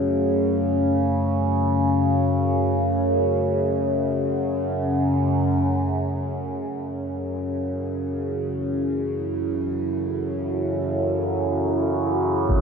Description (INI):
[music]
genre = dark ambient drone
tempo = free time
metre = none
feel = none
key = F# minor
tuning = A4 = 440 Hz
[part]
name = gamelan-type bossed gongs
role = arpeggios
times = 0.0-3.0 s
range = none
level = barely audible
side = none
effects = none
[part]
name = overtone-sweeping drone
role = drone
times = 0.0-12.6 s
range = F#2 to C#3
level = -22 LUFS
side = equal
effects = chorus, built-in reverb, phaser
[part]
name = quartz singing bowl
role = texture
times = 0.0-6.2 s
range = A3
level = -35 LUFS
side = left 1 dB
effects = none
[part]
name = deep dark ambient pad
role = sustained chords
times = 8.3-12.6 s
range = E4 to A4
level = -26 LUFS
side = right 2 dB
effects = chorus, built-in reverb
[part]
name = impact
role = percussion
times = 12.5-12.6 s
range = none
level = -18 LUFS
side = equal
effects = low-pass filter on sfx
[sound]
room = wet huge ambient reverb, RT60 8.3 s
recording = dark, warm production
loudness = -21 LUFS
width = side -6 dB against mid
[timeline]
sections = 0.0-6.2 A section; 6.2-12.6 B section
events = none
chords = 0.0 F#madd9; 6.2 F#m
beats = free time